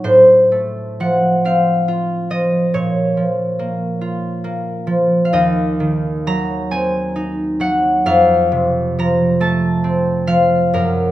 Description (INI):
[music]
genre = classical, solo harp piece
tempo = 45 BPM (dotted quarters)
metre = 6/8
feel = uneven beats, rubato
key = unclear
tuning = A4 = 438 Hz
[part]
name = concert harp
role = solo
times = 0.0-11.1 s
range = Eb2 to Bb5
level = -14 LUFS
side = equal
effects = none
[sound]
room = moderate recital hall reverb, RT60 1.7 s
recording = none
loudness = -14 LUFS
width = side -14 dB against mid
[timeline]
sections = 0.0-11.1 A section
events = none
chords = 0.0 F/A; 2.7 Bbm; 5.3 Cdim/Eb; 8.0 F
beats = | 0.04 1.45 | 2.74 4.01 | 5.32 6.71 | 8.05 9.41 | 10.74